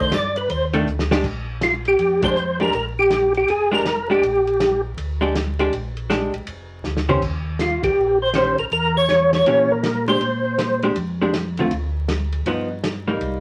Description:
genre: soul jazz organ trio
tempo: 160 BPM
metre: 4/4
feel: swing 64% on 8ths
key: Bb mixolydian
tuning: A4 = 440 Hz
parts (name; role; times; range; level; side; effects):
- percussive tonewheel organ; melody; 0.0-4.8, 7.6-10.8 s; F4 to D5; -20 LUFS; equal; slow rotary speaker, chorus vibrato
- vintage hollow-body jazz guitar; accompaniment; 0.0-13.4 s; D3 to C5; -24 LUFS; equal; none
- mellow tonewheel organ; bass; 0.0-13.4 s; F1 to Bb2; -29 LUFS; equal; slow rotary speaker
- warm soul drum kit; drums; 0.1-13.3 s; crash cymbal, hi-hat, kick drum, ride cymbal, snare drum, toms; -31 LUFS; equal; none
room: wet small room reverb, RT60 0.6 s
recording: vinyl crackle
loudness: -20 LUFS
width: mono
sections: 0.0-1.2 A section; 1.2-13.4 B section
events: tonewheel organ solo 0.0-1.2; drum fill 0.9-1.2, 6.8-7.2; band accent 2.2, 7.8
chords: 0.0 F13 (rootless); 1.2 Bb13; 7.2 Eb6; 8.7 Edim7; 10.2 Bb13; 11.7 N.C.; 12.5 G7alt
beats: 0.12 0.49 0.87 | 1.24 1.61 1.99 2.36 | 2.73 3.11 3.48 3.86 | 4.23 4.60 4.98 5.35 | 5.72 6.10 6.47 6.84 | 7.22 7.59 7.97 8.34 | 8.71 9.09 9.46 9.84 | 10.21 10.58 10.96 11.33 | 11.71 12.08 12.46 12.83 | 13.21

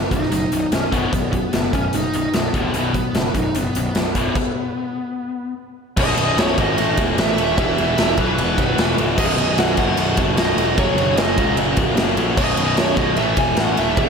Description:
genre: hard rock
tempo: 150 BPM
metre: 4/4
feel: straight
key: B mixolydian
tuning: A4 = 440 Hz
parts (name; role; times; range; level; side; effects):
- dark smooth lead guitar; melody; 0.0-14.1 s; B3 to G#5; -23 LUFS; equal; overdrive, slapback echo
- tight distorted guitar; riff; 0.0-14.1 s; B1 to A3; -22 LUFS; equal; distortion, slapback echo
- fuzz picked electric bass; bass; 0.0-14.1 s; B0 to C#2; -24 LUFS; equal; overdrive
- big rock drum kit; drums; 0.1-14.1 s; crash cymbal, hi-hat, kick drum, ride cymbal, snare drum; -20 LUFS; equal; none
room: light reverb, small room reverb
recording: none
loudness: -16 LUFS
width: side -6 dB against mid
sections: 0.0-6.0 A section; 6.0-14.1 B section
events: stop 4.4-6.0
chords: 0.0 B; 2.5 D5; 2.7 B5; 5.6 N.C.; 6.0 B; 6.8 A5; 7.6 E5; 9.2 B; 10.8 F#5; 12.4 B; 13.2 A5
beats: 0.32 0.72 | 1.13 1.53 1.94 2.34 | 2.75 3.15 3.56 3.96 | 4.37 4.77 5.17 5.57 | 5.97 6.38 6.78 7.18 | 7.58 7.98 8.38 8.78 | 9.18 9.58 9.98 10.38 | 10.78 11.18 11.58 11.98 | 12.38 12.78 13.18 13.58 | 13.98

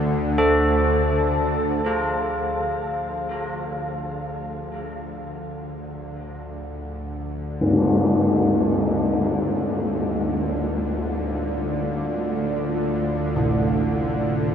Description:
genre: dark ambient drone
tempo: free time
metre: none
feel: none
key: D minor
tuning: A4 = 440 Hz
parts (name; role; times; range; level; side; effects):
- bowed-like drone; drone; 0.0-14.5 s; D2 to D3; -26 LUFS; equal; built-in reverb
- carillon bells; arpeggios; 0.4-14.5 s; A2 to A4; -24 LUFS; equal; tape echo, shimmer reverb
- dark analog pad; sustained chords; 1.9-14.5 s; A3 to F5; -32 LUFS; right 1 dB; chorus, phaser, shimmer reverb
- tam-tam; percussion; 7.6-7.8 s; none; -22 LUFS; left 1 dB; low-pass filter on cymbals
room: wet huge ambient reverb, RT60 7.8 s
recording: none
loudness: -20 LUFS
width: side -8 dB against mid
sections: 0.0-1.9 A section; 1.9-14.5 B section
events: fade-in on synth drone 1.9-14.5; fade-in on analog synth pad 1.9-14.5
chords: 0.0 D5; 1.9 Dm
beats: free time

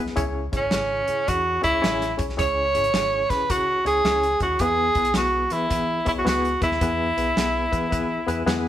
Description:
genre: uptempo 1960s-style soul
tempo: 109 BPM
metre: 4/4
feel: swing 65% on 8ths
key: E major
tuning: A4 = 441 Hz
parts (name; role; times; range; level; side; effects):
- barky reed electric piano; accompaniment; 0.0-8.7 s; C#3 to C#5; -28 LUFS; left 3 dB; overdrive, fast tremolo
- vintage muted fingered electric bass; bass; 0.0-8.7 s; G#1 to E3; -31 LUFS; equal; none
- warm soul drum kit; drums; 0.1-8.7 s; hi-hat, kick drum, snare drum; -28 LUFS; equal; none
- breathy tenor saxophone; melody; 0.6-8.7 s; C#4 to C#5; -22 LUFS; right 1 dB; none
room: moderate studio reverb, RT60 0.9 s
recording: band playing live in one room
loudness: -20 LUFS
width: side -11 dB against mid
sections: 0.0-8.7 A section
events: none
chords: 0.2 C#m; 4.6 E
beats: | 0.18 0.73 1.28 1.84 | 2.39 2.94 3.50 4.05 | 4.60 5.15 5.71 6.26 | 6.81 7.36 7.91 8.46

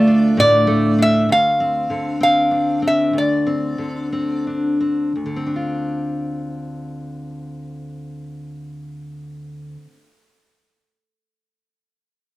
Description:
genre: acoustic folk duo or small band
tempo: 56-66 BPM (dotted quarters)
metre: 6/8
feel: straight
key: D minor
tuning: A4 = 440 Hz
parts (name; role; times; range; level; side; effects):
- lap resonator guitar; melody; 0.0-4.4 s; D5 to F5; -17 LUFS; equal; none
- fingerpicked steel-string acoustic guitar; accompaniment; 0.0-10.2 s; D2 to F4; -20 LUFS; equal; none
room: little or no reverb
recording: recorded outdoors, with no room sound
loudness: -16 LUFS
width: side -18 dB against mid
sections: 0.0-1.3 A section; 1.3-5.2 B section; 5.2-9.4 C section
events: slowing down 1.3-5.2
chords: 0.0 Dm; 1.3 Dm7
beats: 0.38 | 1.29 2.21 | 3.15 4.13 | 5.16 6.22 | 7.29 8.35

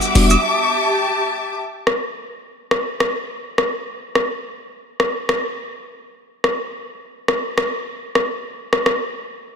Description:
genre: afrobeats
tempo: 105 BPM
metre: 4/4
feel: straight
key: unclear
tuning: A4 = 440 Hz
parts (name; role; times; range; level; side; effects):
- warm studio string section; sustained chords; 0.0-1.6 s; G3 to D6; -18 LUFS; left 2 dB; none
- afro-pop drum kit; drums; 0.0-9.0 s; hi-hat, rim click, shaker; -20 LUFS; left 1 dB; overdrive
room: moderate lush hall reverb, RT60 1.9 s, digital ambience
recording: dense, heavily limited modern master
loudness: -18 LUFS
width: side -6 dB against mid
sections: 0.0-1.6 A section; 1.6-9.6 B section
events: break 0.4-1.6, 1.6-9.6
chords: 0.4 A7sus4; 1.6 N.C.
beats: 0.44 1.01 | 1.58 2.15 2.72 3.29 | 3.87 4.44 5.01 5.58 | 6.15 6.72 7.29 7.87 | 8.44

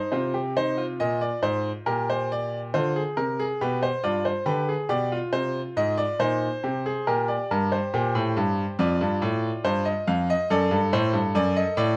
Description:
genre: classical, baroque-style 3-part fugue for grand piano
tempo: 70 BPM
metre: 4/4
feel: straight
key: C minor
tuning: A4 = 442 Hz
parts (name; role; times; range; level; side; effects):
- bright grand piano; solo; 0.0-12.0 s; F2 to F5; -25 LUFS; equal; none
room: light reverb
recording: close, detailed microphones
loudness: -25 LUFS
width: mono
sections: 0.1-12.0 A section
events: none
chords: 0.1 Cm; 1.9 Bb; 3.6 G; 5.3 Cm; 7.1 Gm; 8.8 F; 10.5 D/F#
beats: | 0.12 1.00 1.87 2.73 | 3.60 4.46 5.33 6.20 | 7.06 7.92 8.78 9.64 | 10.50 11.35

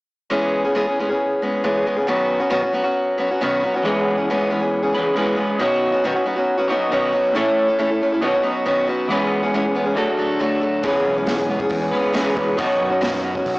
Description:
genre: folk rock and heartland rock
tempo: 137 BPM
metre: 4/4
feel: straight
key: E major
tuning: A4 = 441 Hz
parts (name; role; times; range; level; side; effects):
- picked steel-string acoustic guitar; accompaniment; 0.3-13.6 s; A2 to A4; -19 LUFS; equal; none
- electric guitar through a small old amp; riff; 3.8-13.6 s; E2 to C#5; -21 LUFS; equal; wide subtle chorus
- modern bright picked electric bass; bass; 10.8-13.6 s; B1 to F#2; -31 LUFS; equal; none
- vintage drum kit; drums; 10.8-13.6 s; hi-hat, kick drum, snare drum; -28 LUFS; equal; none
room: moderate plate reverb, RT60 1.6 s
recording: blown-out, overdriven recording, overdrive, small speaker sound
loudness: -17 LUFS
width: side -22 dB against mid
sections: 0.3-3.8 A section; 3.8-13.6 B section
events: none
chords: 0.3 E6; 2.1 Badd9; 3.8 E6; 5.6 Badd9; 7.4 A; 8.2 Badd9; 9.1 E6; 10.0 D; 10.8 E6; 12.6 Badd9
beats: | 0.31 0.75 1.19 1.63 | 2.08 2.52 2.96 3.40 | 3.84 4.28 4.72 5.16 | 5.60 6.04 6.48 6.91 | 7.35 7.79 8.23 8.66 | 9.10 9.54 9.97 10.41 | 10.85 11.28 11.72 12.15 | 12.59 13.03 13.46

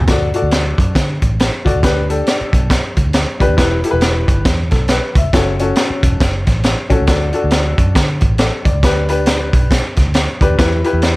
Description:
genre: uptempo 1960s-style soul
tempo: 137 BPM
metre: 4/4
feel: swing 60% on 8ths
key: D major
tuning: A4 = 440 Hz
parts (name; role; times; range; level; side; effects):
- vintage muted fingered electric bass; bass; 0.0-11.2 s; E1 to D3; -18 LUFS; equal; none
- warm upright piano; accompaniment; 0.1-11.2 s; C#4 to E5; -18 LUFS; left 2 dB; none
- crunchy breakbeat drum kit; drums; 0.1-11.2 s; hi-hat, kick drum, snare drum; -14 LUFS; equal; none
room: little or no reverb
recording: none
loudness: -12 LUFS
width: side -21 dB against mid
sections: 0.1-11.2 A section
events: none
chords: 0.1 D; 1.8 G; 3.6 Em; 5.3 F#m; 7.1 D; 8.8 G; 10.6 Em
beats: | 0.07 0.51 0.95 1.39 | 1.82 2.26 2.70 3.14 | 3.58 4.02 4.45 4.89 | 5.33 5.77 6.21 6.64 | 7.08 7.52 7.96 8.40 | 8.84 9.28 9.71 10.15 | 10.59 11.03

